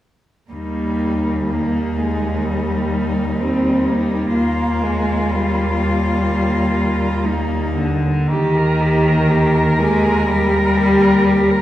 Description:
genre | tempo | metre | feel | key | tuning
classical, lyrical piece for cello ensemble | 55-64 BPM | 4/4 | rubato | Eb major | A4 = 442 Hz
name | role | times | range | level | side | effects
rich cello | melody | 0.5-11.6 s | Eb4 to Bb4 | -24 LUFS | left 3 dB | none
warm cello | second line | 0.5-11.6 s | G3 to Bb4 | -22 LUFS | right 2 dB | none
rich cello | accompaniment | 0.5-11.6 s | D3 to Bb3 | -18 LUFS | left 1 dB | none
rich cello | bass | 0.5-11.6 s | Eb2 | -22 LUFS | right 1 dB | none
room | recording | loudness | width
wet recital hall reverb, RT60 1.5 s | heard from further back in the room | -15 LUFS | side -13 dB against mid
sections
0.5-8.3 A section; 8.3-11.6 B section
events
none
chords
0.5 Eb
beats
| 0.52 1.51 2.47 3.40 | 4.35 5.29 6.24 7.24 | 8.29 9.29 10.28 11.23

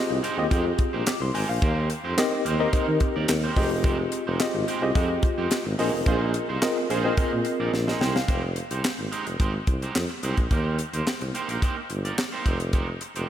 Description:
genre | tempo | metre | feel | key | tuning
early-eighties boogie funk | 108 BPM | 4/4 | straight | F minor | A4 = 440 Hz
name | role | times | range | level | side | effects
tine electric piano | accompaniment | 0.0-8.4 s | C4 to D6 | -26 LUFS | left 2 dB | overdrive, fast stereo tremolo
electric guitar at the edge of break-up | riff | 0.1-13.3 s | Ab3 to D5 | -31 LUFS | right 4 dB | analog chorus
warm tuba | bass | 0.1-13.2 s | F1 to Eb3 | -28 LUFS | equal | none
tight funk drum kit | drums | 0.2-13.3 s | handclaps, hi-hat, kick drum, snare drum | -26 LUFS | equal | none
analog synth brass | second line | 6.1-7.1 s | F4 to C5 | -33 LUFS | right 3 dB | none
room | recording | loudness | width
moderate lush hall reverb, RT60 2.2 s | dreamy mix soaked in reverb | -22 LUFS | side -10 dB against mid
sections
0.0-8.3 A section; 8.3-13.3 B section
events
band accent 6.1-8.3; drum fill 7.7-8.3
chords
0.0 Fm9; 1.6 Eb6; 3.6 Fm9; 5.8 Bb9sus4; 8.3 Fm9; 10.5 Eb6; 12.5 Fm9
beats
0.51 1.07 | 1.62 2.18 2.73 3.29 | 3.84 4.40 4.96 5.51 | 6.07 6.62 7.18 7.73 | 8.29 8.84 9.40 9.96 | 10.51 11.07 11.62 12.18 | 12.73

